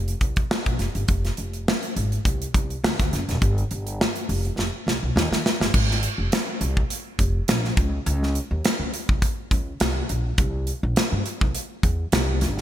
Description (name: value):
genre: polished 1980s jazz-funk pop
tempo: 103 BPM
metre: 4/4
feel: swing 54% on 16ths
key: unclear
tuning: A4 = 440 Hz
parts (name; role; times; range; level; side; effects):
- upright bass; bass; 0.0-12.6 s; E1 to Eb3; -25 LUFS; equal; none
- modern studio drum kit; drums; 0.1-12.6 s; crash cymbal, hi-hat, kick drum, snare drum; -23 LUFS; equal; gated reverb
room: light reverb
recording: bright 1980s-style digital production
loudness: -21 LUFS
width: side -12 dB against mid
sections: 0.0-5.7 A section; 5.7-12.6 B section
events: drum fill 4.6-5.7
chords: none